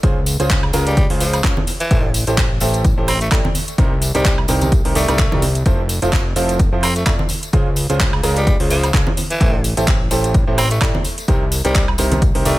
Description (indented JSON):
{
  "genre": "piano house",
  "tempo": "128 BPM",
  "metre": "4/4",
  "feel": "swing 56% on 16ths",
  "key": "unclear",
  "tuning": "A4 = 444 Hz",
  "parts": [
    { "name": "clear upright piano", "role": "riff", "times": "0.0-12.6 s", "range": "C3 to D5", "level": "-22 LUFS", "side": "right 2 dB", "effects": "sidechain pumping" },
    { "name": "fat analog bass", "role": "bass", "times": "0.0-12.6 s", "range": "F1 to F2", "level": "-20 LUFS", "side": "equal", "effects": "sidechain pumping" },
    { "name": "electronic kick drum", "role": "drums", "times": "0.0-12.3 s", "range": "none", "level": "-17 LUFS", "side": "equal", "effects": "studio reverb" },
    { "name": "garage drum kit", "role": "drums", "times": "0.0-12.6 s", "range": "handclaps, hi-hat, woodblock", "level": "-23 LUFS", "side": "right 1 dB", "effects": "studio reverb" },
    { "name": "tambourine and congas", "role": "percussion", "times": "0.0-12.6 s", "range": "none", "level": "-26 LUFS", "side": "equal", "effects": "none" },
    { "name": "growling tenor saxophone", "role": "melody", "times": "0.9-12.6 s", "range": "E3 to C4", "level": "-24 LUFS", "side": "equal", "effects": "tape echo" }
  ],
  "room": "digital ambience",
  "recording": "none",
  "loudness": "-14 LUFS",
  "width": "side -17 dB against mid",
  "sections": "0.0-12.6 A section",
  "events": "none",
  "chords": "0.0 Dbmaj7; 1.7 Am7; 3.8 Cm7; 5.7 Fmaj7; 7.3 Dbmaj7; 9.2 Am7; 11.3 Cm7",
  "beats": "| 0.03 0.50 0.97 1.44 | 1.91 2.38 2.85 3.31 | 3.78 4.25 4.72 5.19 | 5.66 6.13 6.59 7.06 | 7.53 8.00 8.47 8.94 | 9.41 9.88 10.35 10.81 | 11.28 11.75 12.22"
}